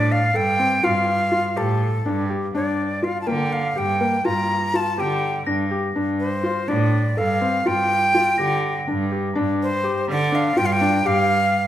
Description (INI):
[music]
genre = contemporary instrumental, chamber music in an uneven meter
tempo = 246 BPM (eighths)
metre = 7/8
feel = straight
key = G minor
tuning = A4 = 440 Hz
[part]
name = breathy bright jazz flute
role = melody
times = 0.0-11.7 s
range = A4 to Bb5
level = -21 LUFS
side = equal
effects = none
[part]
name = felt-muted upright piano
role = arpeggios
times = 0.0-11.4 s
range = Bb3 to A4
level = -24 LUFS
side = left 2 dB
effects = none
[part]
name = rich cello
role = bass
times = 0.0-11.6 s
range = G2 to D3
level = -24 LUFS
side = right 3 dB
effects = none
[part]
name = glockenspiel with rubber mallets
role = texture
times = 0.1-1.4, 5.5-9.5 s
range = A6 to C7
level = -32 LUFS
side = left 1 dB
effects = none
[sound]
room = wet recital hall reverb, RT60 1.5 s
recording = none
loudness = -18 LUFS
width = side -12 dB against mid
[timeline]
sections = 0.0-9.4 A section; 9.4-11.7 A section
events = none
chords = 0.0 Dm/G; 2.5 Gm7; 6.0 Dm/G; 7.7 Gm7; 9.4 G7(no3)